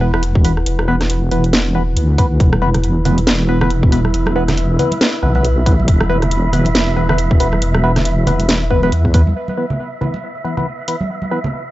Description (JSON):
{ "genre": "deep dubstep", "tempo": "138 BPM", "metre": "4/4", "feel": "swing 58% on 16ths, half-time", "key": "unclear", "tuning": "A4 = 440 Hz", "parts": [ { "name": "dark analog pad", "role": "sustained chords", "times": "0.0-11.7 s", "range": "E4 to B5", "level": "-25 LUFS", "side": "right 1 dB", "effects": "lush chorus" }, { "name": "percussive organ stab", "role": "stabs", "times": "0.0-11.4 s", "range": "E3 to B4", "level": "-21 LUFS", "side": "left 1 dB", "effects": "chorus, phaser, dub echo" }, { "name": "deep soft wobble bass", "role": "bass", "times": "0.0-9.3 s", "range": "E1 to E2", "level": "-15 LUFS", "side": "equal", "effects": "chorus" }, { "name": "garage drum kit", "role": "drums", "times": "0.1-11.0 s", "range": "hi-hat, rim click, snare drum", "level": "-19 LUFS", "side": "equal", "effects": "studio reverb" }, { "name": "electronic kick drum", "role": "drums", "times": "0.4-9.2 s", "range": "none", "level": "-13 LUFS", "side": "equal", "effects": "studio reverb" }, { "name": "wind-like tuned noise texture", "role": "texture", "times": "3.2-11.7 s", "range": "E5", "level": "-26 LUFS", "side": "right 3 dB", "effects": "built-in reverb" }, { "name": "congas", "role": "percussion", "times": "2.5-11.5 s", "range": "none", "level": "-22 LUFS", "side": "right 1 dB", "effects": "none" } ], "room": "little or no reverb", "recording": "dry, gritty hardware recording, cassette tape, nothing above 7.9 kHz", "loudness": "-13 LUFS", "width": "side -16 dB against mid", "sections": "0.0-9.4 A section; 9.4-11.7 B section", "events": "none", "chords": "0.0 E5" }